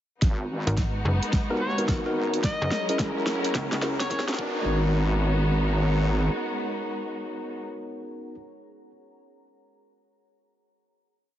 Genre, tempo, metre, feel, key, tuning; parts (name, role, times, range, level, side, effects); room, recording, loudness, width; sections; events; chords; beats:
glitch hop; 108 BPM; 4/4; swing 64% on 16ths; G# minor; A4 = 440 Hz
warm studio string section; sustained chords; 0.2-7.6 s; F#3 to A#4; -32 LUFS; equal; vintage 12-bit sampler grit, sidechain pumping
wobble bass; bass; 0.2-6.3 s; E1 to D#2; -26 LUFS; equal; chorus, tube saturation, high-pass filter
electronic kick drum; drums; 0.2-4.5 s; -25 LUFS; equal; overdrive
pop drum kit; drums; 0.2-4.4 s; hi-hat, rim click, snare drum; -32 LUFS; equal; overdrive
riser; sound effects; 1.6-4.7 s; -38 LUFS; right 1 dB
deep dark ambient pad; texture; 2.2-7.6 s; G#4 to A#5; -37 LUFS; equal; chorus, built-in reverb, sidechain pumping
bright tine electric piano; stabs; 0.7-8.3 s; B3 to A#4; -31 LUFS; equal; sidechain pumping, low-pass filter, tape echo
slap-like FM bass; bass; 0.7-4.3 s; F#1 to C#2; -27 LUFS; equal; tube saturation
overdriven harmonica; melody; 1.6-4.2 s; C#5 to D#5; -34 LUFS; left 2 dB; low-pass filter, tape echo
light reverb, digital ambience; heavily compressed radio sound, multiband compression, high-pass filter, nothing above 7.6 kHz; -23 LUFS; side -12 dB against mid
0.2-4.7 build; 4.7-6.9 final chord
build-up 0.2-4.7; drum fill 0.2-4.7; filter sweep 0.2-4.7; riser 1.6-4.7
0.2 G#m7; 2.4 F#7; 4.4 G#m7
| 0.22 0.77 1.33 1.89 | 2.44 3.00 3.55 4.11 | 4.66 5.22 5.77 6.33